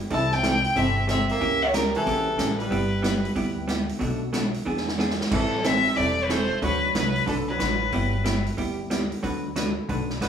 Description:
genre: country, western swing.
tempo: 184 BPM.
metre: 4/4.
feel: swing 64% on 8ths.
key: G major.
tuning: A4 = 441 Hz.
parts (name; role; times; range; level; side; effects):
rich fiddle; melody; 0.1-8.4 s; A4 to A5; -25 LUFS; left 2 dB; none.
archtop guitar, miked and amplified; second line; 0.1-8.4 s; D3 to E4; -29 LUFS; right 2 dB; none.
vintage hollow-body jazz guitar; accompaniment; 0.1-10.3 s; B2 to B4; -28 LUFS; right 1 dB; none.
upright bass; bass; 0.1-10.3 s; E1 to E2; -30 LUFS; equal; none.
swinging big-band drum kit; drums; 0.1-10.3 s; crash cymbal, hi-hat, kick drum, snare drum; -29 LUFS; right 1 dB; none.
room: moderate large studio reverb, RT60 1.1 s.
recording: band playing live in one room, small room ambience.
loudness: -22 LUFS.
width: side -8 dB against mid.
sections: 0.0-10.3 A section.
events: drum fill 4.7-5.3.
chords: 0.1 C6; 1.4 C#dim7; 2.7 G6; 4.0 Bm7; 4.7 E7; 5.3 Am7; 6.6 D6; 7.9 G6; 9.2 D6.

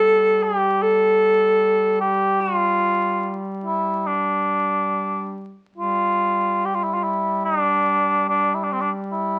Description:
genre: caucasian folk, Caucasian lament.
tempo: 69-78 BPM.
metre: 4/4.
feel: rubato.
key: unclear.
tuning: A4 = 437 Hz.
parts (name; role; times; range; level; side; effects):
mellow cor anglais; melody; 0.0-9.4 s; C4 to A4; -21 LUFS; equal; none.
mellow duduk; drone; 0.0-9.4 s; G3; -31 LUFS; equal; none.
room: moderate studio reverb, RT60 0.8 s.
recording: very old 78 rpm record, vinyl crackle.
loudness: -21 LUFS.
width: mono.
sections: 0.0-9.4 A section.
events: none.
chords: none.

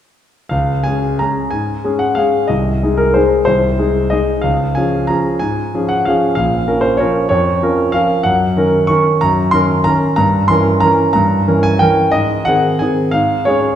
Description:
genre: classical, piano waltz.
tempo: 166-204 BPM.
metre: 3/4.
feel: rubato.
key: Db major.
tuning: A4 = 440 Hz.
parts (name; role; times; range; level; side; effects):
clear concert grand piano; solo; 0.5-13.8 s; Bb1 to Db6; -12 LUFS; equal; none.
room: wet recital hall reverb, RT60 1.7 s.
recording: heard from further back in the room.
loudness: -12 LUFS.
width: side -10 dB against mid.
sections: 0.5-13.8 A section.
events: none.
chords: 0.5 Db; 2.5 Ab/C; 4.4 Db; 6.4 Bbm; 8.2 Ebm7/Gb; 10.2 Gdim7; 12.1 Ab; 13.1 Db/Ab.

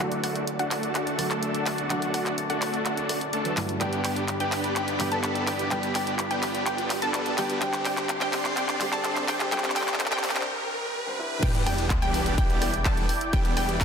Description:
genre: EDM, festival progressive house.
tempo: 126 BPM.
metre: 4/4.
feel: straight.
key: E minor.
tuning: A4 = 439 Hz.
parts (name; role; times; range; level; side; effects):
dark concert grand piano; accompaniment; 0.0-11.5 s; G2 to C5; -33 LUFS; equal; sidechain pumping, ping-pong delay.
lush unison pad; sustained chords; 0.0-13.8 s; E4 to C6; -33 LUFS; equal; chorus, phaser, sidechain pumping.
wide unison pluck; arpeggios; 0.0-13.8 s; F#5 to A5; -33 LUFS; equal; sidechain pumping, ping-pong delay.
big supersaw lead; riff; 0.0-13.8 s; E3 to A4; -30 LUFS; equal; sidechain pumping, low-pass filter, ping-pong delay.
detuned saw bass; bass; 0.0-13.8 s; E1 to G2; -38 LUFS; equal; none.
big-room dance drum kit; drums; 0.0-13.8 s; crash cymbal, handclaps, hi-hat, rim click; -31 LUFS; equal; soft clipping on snare, high-pass filter on snare, high-pass filter on hats, high-pass filter on cymbals.
riser and sub drop; sound effects; 0.6-13.3 s; none; -35 LUFS; equal; none.
electronic kick drum; drums; 11.4-13.8 s; none; -25 LUFS; equal; none.
room: moderate huge ambient reverb, RT60 4.3 s.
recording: dense, heavily limited modern master, high-pass filter.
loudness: -24 LUFS.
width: side -6 dB against mid.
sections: 0.0-11.4 A section; 11.4-13.8 B section.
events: build-up 0.0-11.4; drum fill 0.0-10.5; filter sweep on supersaw synth 0.0-11.4; filter sweep on synth pluck 0.0-11.4; break 10.5-11.4; drop 11.4-13.8; impact 11.4-13.3.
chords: 0.0 D/F#; 3.8 G; 7.6 Csus2; 11.4 Em7.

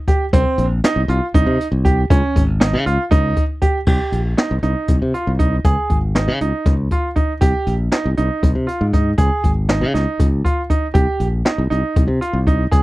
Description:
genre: progressive instrumental, band music in an uneven meter.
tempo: 237 BPM (eighths).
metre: 7/8.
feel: straight.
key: unclear.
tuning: A4 = 440 Hz.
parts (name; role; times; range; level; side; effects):
clear concert grand piano; arpeggios; 0.1-12.8 s; C4 to Ab4; -21 LUFS; right 3 dB; none.
jazz brush drum kit; drums; 0.1-12.8 s; crash cymbal, hi-hat, kick drum, snare drum; -17 LUFS; equal; none.
modern bright fingered electric bass; bass; 0.3-12.8 s; Ab1 to Db3; -18 LUFS; equal; none.
room: little or no reverb.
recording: dry, close 1970s-style studio recording.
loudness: -15 LUFS.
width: side -18 dB against mid.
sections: 0.0-3.9 A section; 3.9-12.8 B section.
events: none.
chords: 0.3 Cm7; 2.1 Dbsus2; 3.9 Cm7; 5.6 Dbsus2; 7.4 Cm7; 9.2 Dbsus2; 11.0 Cm7.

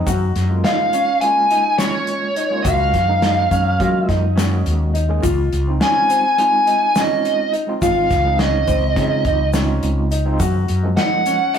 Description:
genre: progressive instrumental, band music in an uneven meter.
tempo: 209 BPM (eighths).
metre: 9/8.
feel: straight.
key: unclear.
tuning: A4 = 440 Hz.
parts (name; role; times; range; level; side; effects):
overdriven tine electric piano; accompaniment; 0.0-11.6 s; F3 to Ab4; -26 LUFS; right 2 dB; fast tremolo.
mellow fretless electric bass; bass; 0.0-11.0 s; Ab1 to Gb3; -19 LUFS; equal; none.
clear grand piano; arpeggios; 0.1-11.6 s; C4 to Gb4; -25 LUFS; left 2 dB; none.
warm soul drum kit; drums; 0.1-11.6 s; hi-hat, kick drum, snare drum; -23 LUFS; equal; none.
tube shaker; percussion; 0.1-11.5 s; none; -37 LUFS; left 5 dB; none.
smooth overdriven lead guitar; melody; 0.6-11.6 s; Db5 to Ab5; -17 LUFS; right 1 dB; none.
room: moderate stone room reverb, RT60 1.3 s.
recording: rough rehearsal-room recording.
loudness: -15 LUFS.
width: side -8 dB against mid.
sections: 0.0-11.6 A section.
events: none.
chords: 0.1 Gbmaj9; 5.2 Dbmaj7; 10.4 Gbmaj9.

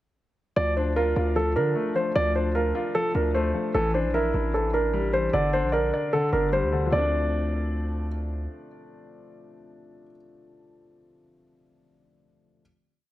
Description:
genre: hip hop, trap.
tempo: 151 BPM.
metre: 4/4.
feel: half-time.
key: D minor.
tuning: A4 = 440 Hz.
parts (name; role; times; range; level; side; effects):
dark baby grand piano; melody; 0.6-8.1 s; A4 to D5; -25 LUFS; right 1 dB; tape echo.
dark concert grand piano; accompaniment; 0.6-12.6 s; D3 to D5; -29 LUFS; left 2 dB; none.
hard-hitting 808-style bass; bass; 0.6-8.5 s; G1 to D3; -27 LUFS; equal; none.
room: light reverb, small room ambience.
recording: none.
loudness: -22 LUFS.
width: side -14 dB against mid.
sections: 0.6-6.9 hook; 6.9-10.1 final chord.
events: none.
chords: 0.6 Dm7; 3.7 A7sus4; 5.3 Gm; 6.9 Dm7.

